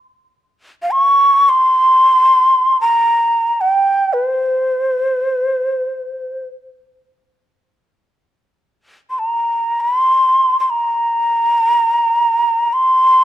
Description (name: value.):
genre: japanese traditional, Japanese chamber music.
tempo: free time.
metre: none.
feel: none.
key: C in sen.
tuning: A4 = 437 Hz.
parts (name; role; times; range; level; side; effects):
breathy mellow shakuhachi; solo; 0.8-13.2 s; C5 to Db6; -12 LUFS; equal; none.
room: light reverb.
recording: close, detailed microphones.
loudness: -12 LUFS.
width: side -12 dB against mid.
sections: 0.0-8.1 A section; 8.1-13.2 A section.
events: none.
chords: none.